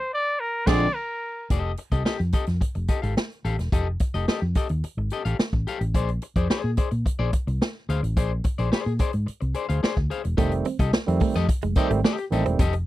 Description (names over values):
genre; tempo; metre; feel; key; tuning
funk; 108 BPM; 4/4; straight; F mixolydian; A4 = 440 Hz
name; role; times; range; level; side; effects
warm trumpet; melody; 0.0-1.5 s; Bb4 to D5; -25 LUFS; equal; none
growling tenor saxophone; second line; 0.7-0.8 s; Ab4; -30 LUFS; right 15 dB; none
electric guitar at the edge of break-up; accompaniment; 0.7-12.7 s; D4 to F5; -30 LUFS; left 7 dB; none
barky tine electric piano; stabs; 0.7-0.9, 10.4-12.6 s; D3 to C4; -26 LUFS; right 5 dB; overdrive, tube saturation
vintage muted fingered electric bass; bass; 0.7-12.8 s; E1 to Bb2; -25 LUFS; equal; none
swinging big-band drum kit; drums; 0.7-12.9 s; crash cymbal, hi-hat, kick drum, snare drum; -24 LUFS; equal; none
direct-recorded clean electric guitar; riff; 10.4-12.8 s; Ab3 to C4; -29 LUFS; right 9 dB; harmonic tremolo
room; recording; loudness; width
little or no reverb; dry, close 1970s-style studio recording; -22 LUFS; side -16 dB against mid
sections
0.0-1.5 A section; 1.5-10.4 B section; 10.4-12.9 C section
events
band accent 0.0-1.5; trumpet solo 0.0-1.5; silent gap 0.4-1.5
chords
0.0 Bb9; 1.5 F9; 5.9 Bb9; 10.4 F9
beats
0.40 0.95 | 1.50 2.06 2.61 3.17 | 3.72 4.28 4.83 5.39 | 5.95 6.50 7.06 7.61 | 8.17 8.72 9.28 9.83 | 10.38 10.93 11.49 12.04 | 12.59